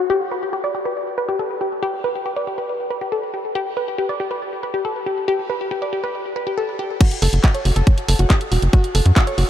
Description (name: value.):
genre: psychedelic trance.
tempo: 139 BPM.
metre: 4/4.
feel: straight.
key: unclear.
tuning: A4 = 436 Hz.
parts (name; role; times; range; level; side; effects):
woody wave-folded pluck; riff; 0.0-9.5 s; F#4 to D5; -22 LUFS; left 1 dB; chorus, auto-pan, cassette tape, sidechain pumping, ping-pong delay.
electronic kick drum; drums; 7.0-9.2 s; none; -14 LUFS; equal; none.
garage drum kit; drums; 7.0-9.5 s; crash cymbal, handclaps, hi-hat; -23 LUFS; equal; none.
tight sequencer bass; bass; 7.2-9.4 s; E1 to F#2; -15 LUFS; equal; none.
room: moderate huge ambient reverb, RT60 6.7 s.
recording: dreamy mix soaked in reverb.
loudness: -18 LUFS.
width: side -11 dB against mid.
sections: 0.0-7.0 A section; 7.0-9.5 B section.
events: filter sweep on synth arpeggio sound 0.0-7.0; drop 7.0-9.5.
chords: 0.1 G5; 7.0 F#5.